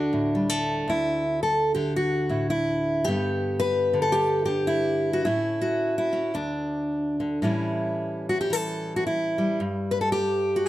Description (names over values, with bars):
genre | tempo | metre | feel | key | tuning
folk, solo fingerstyle acoustic guitar | 110 BPM | 4/4 | swing 59% on 8ths | unclear | A4 = 440 Hz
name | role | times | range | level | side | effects
fingerpicked steel-string acoustic guitar | solo | 0.0-10.7 s | D2 to B4 | -23 LUFS | equal | none
room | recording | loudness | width
light reverb | close, detailed microphones | -23 LUFS | side -14 dB against mid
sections
0.0-7.4 A section; 7.4-10.7 B section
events
none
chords
0.0 Dadd9; 3.1 Gadd9; 5.2 A; 6.3 N.C.; 7.4 A7; 9.6 G5